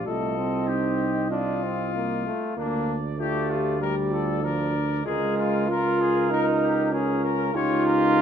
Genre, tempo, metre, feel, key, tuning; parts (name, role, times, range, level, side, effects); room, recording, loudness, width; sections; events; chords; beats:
classical, brass quintet; 96 BPM; 4/4; straight; Bb major; A4 = 440 Hz
warm trumpet; melody; 0.0-8.2 s; D4 to Db5; -30 LUFS; left 8 dB
mellow flugelhorn; second line; 0.0-8.2 s; G4 to Eb5; -32 LUFS; right 8 dB
clear trombone; accompaniment; 0.0-8.2 s; F3 to F4; -26 LUFS; right 2 dB
dark French horn; accompaniment; 0.0-8.2 s; D4 to G4; -29 LUFS; left 6 dB
mellow tuba; bass; 0.0-8.2 s; C2 to D2; -29 LUFS; right 3 dB
wet recital hall reverb, RT60 1.3 s; -22 LUFS; side -8 dB against mid
0.0-8.2 A section
0.1 F7/C; 2.6 Bb/D; 5.1 Bbm7/Db; 7.6 Eb7/Db
| 0.07 0.69 1.32 1.96 | 2.58 3.20 3.82 4.44 | 5.06 5.69 6.31 6.93 | 7.55 8.18